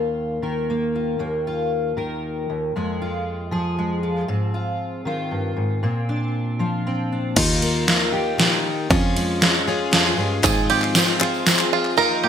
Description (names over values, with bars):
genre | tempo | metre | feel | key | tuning
indie folk with a building arrangement | 117 BPM | 3/4 | straight | Eb major | A4 = 441 Hz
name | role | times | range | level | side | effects
fingerpicked steel-string acoustic guitar | accompaniment | 0.0-12.3 s | Eb2 to Bb4 | -23 LUFS | left 1 dB | analog chorus
picked plugged-in twelve-string acoustic guitar | accompaniment | 7.4-12.3 s | Ab2 to F4 | -23 LUFS | left 4 dB | none
picked electric bass | bass | 7.4-11.4 s | Eb2 to Ab2 | -25 LUFS | right 1 dB | none
dubstep drum kit | drums | 7.4-11.6 s | crash cymbal, kick drum, ride cymbal, snare drum | -19 LUFS | right 1 dB | overdrive, gated reverb
bluegrass banjo | arpeggios | 10.4-12.3 s | F4 to Bb4 | -21 LUFS | right 8 dB | digital delay
group handclap | percussion | 10.4-11.9 s | none | -26 LUFS | left 5 dB | none
tambourine | percussion | 10.4-11.6 s | none | -29 LUFS | right 13 dB | none
room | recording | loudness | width
moderate plate reverb, RT60 1.3 s, small room ambience | bright 1980s-style digital production | -19 LUFS | side -8 dB against mid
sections
0.0-7.4 A section; 7.4-12.3 B section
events
none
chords
0.0 Ebsus2; 2.7 Fm; 4.3 Ab6; 5.8 Bbadd9; 7.4 Ebsus2; 8.9 Db/F; 10.4 Ab6